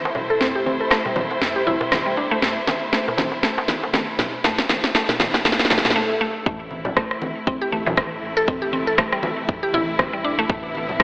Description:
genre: afro house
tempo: 119 BPM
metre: 4/4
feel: swing 57% on 16ths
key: A minor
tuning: A4 = 441 Hz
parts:
  - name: warm studio string section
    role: sustained chords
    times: 0.0-11.0 s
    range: C3 to C5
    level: -27 LUFS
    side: equal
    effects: sidechain pumping
  - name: congas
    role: percussion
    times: 0.1-11.0 s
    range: none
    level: -29 LUFS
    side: equal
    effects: none
  - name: darbuka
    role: percussion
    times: 0.1-5.9 s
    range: none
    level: -30 LUFS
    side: equal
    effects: none
  - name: mallet-like synth pluck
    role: arpeggios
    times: 0.3-11.0 s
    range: E3 to A4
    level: -24 LUFS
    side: equal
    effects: chorus, sidechain pumping, dub echo
  - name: house drum kit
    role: drums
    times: 0.4-11.0 s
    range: rim click, snare drum, toms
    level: -21 LUFS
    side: equal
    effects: none
  - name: swell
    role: sound effects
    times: 6.0-6.5 s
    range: none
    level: -28 LUFS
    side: equal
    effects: none
  - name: round analog bass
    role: bass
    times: 6.5-11.0 s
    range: A1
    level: -38 LUFS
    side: equal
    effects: sidechain pumping
  - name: electronic kick drum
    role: drums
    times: 6.5-11.0 s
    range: none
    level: -23 LUFS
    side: equal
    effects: none
room: wet lush hall reverb, RT60 2.3 s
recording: AM radio sound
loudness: -18 LUFS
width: side -25 dB against mid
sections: 0.0-6.5 A section; 6.5-11.0 B section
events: build-up 0.0-6.5; drum fill 0.0-6.0; filter sweep on synth pluck 0.0-6.5; break 6.0-6.5; swell 6.0-6.5; drop 6.5-11.0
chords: 0.0 Am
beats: | 0.41 0.92 1.42 1.92 | 2.43 2.93 3.44 3.94 | 4.45 4.95 5.45 5.96 | 6.46 6.97 7.47 7.97 | 8.48 8.98 9.49 9.99 | 10.50 11.00

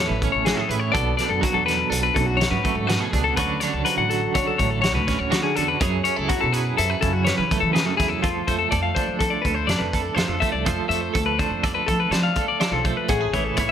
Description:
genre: math rock and midwest emo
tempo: 123 BPM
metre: 5/4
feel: straight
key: unclear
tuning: A4 = 440 Hz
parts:
  - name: twelve-string electric guitar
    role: accompaniment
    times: 0.0-13.7 s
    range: F#2 to B4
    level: -25 LUFS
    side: right 10 dB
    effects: tremolo
  - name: clean electric guitar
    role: arpeggios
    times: 0.0-13.7 s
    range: F4 to F#5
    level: -23 LUFS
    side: left 9 dB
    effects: spring reverb
  - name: upright bass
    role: bass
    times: 0.0-13.7 s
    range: A1 to F3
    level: -27 LUFS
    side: equal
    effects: none
  - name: loose indie drum kit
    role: drums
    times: 0.2-13.7 s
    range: hi-hat, kick drum, snare drum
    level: -26 LUFS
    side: equal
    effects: none
room: little or no reverb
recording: none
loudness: -19 LUFS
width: side -9 dB against mid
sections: 0.0-8.2 A section; 8.2-13.7 B section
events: none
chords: 0.0 A69; 0.9 Bm7; 3.4 Dmaj7; 5.8 F#m11; 8.2 F6; 13.1 Amaj7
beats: 0.44 | 0.93 1.42 1.90 2.39 2.88 | 3.36 3.85 4.34 4.82 5.31 | 5.80 6.28 6.77 7.25 7.74 | 8.23 8.72 9.20 9.69 10.18 | 10.66 11.15 11.63 12.12 12.61 | 13.09 13.57

